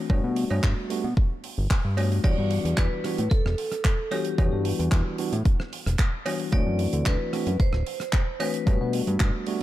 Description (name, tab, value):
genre	nu-disco, nu disco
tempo	112 BPM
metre	4/4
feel	straight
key	E minor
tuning	A4 = 439 Hz
part	tine electric piano	accompaniment	0.0-9.6 s	E3 to F#4	-30 LUFS	moving between left 6 dB and right 6 dB	auto-pan, sidechain pumping
part	fat analog bass	bass	0.1-9.3 s	D1 to B2	-26 LUFS	equal	tube saturation
part	electronic kick drum	drums	0.1-9.3 s	none	-22 LUFS	equal	none
part	cowbell	percussion	0.1-8.8 s	none	-34 LUFS	right 3 dB	none
part	damped 70s drum kit	drums	0.4-9.6 s	crash cymbal, handclaps, hi-hat, rim click	-34 LUFS	right 2 dB	none
part	vibraphone with hard mallets	melody	2.2-8.9 s	G4 to D5	-32 LUFS	left 1 dB	vintage 12-bit sampler grit, dub echo
room	small room ambience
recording	dark, warm production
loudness	-22 LUFS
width	side -14 dB against mid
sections	0.0-9.6 A section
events	none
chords	0.1 Gmaj7; 2.2 Em7; 6.5 D7; 8.7 Gmaj7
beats	| 0.10 0.63 1.17 1.71 | 2.24 2.78 3.31 3.85 | 4.38 4.92 5.46 5.99 | 6.53 7.06 7.60 8.13 | 8.67 9.21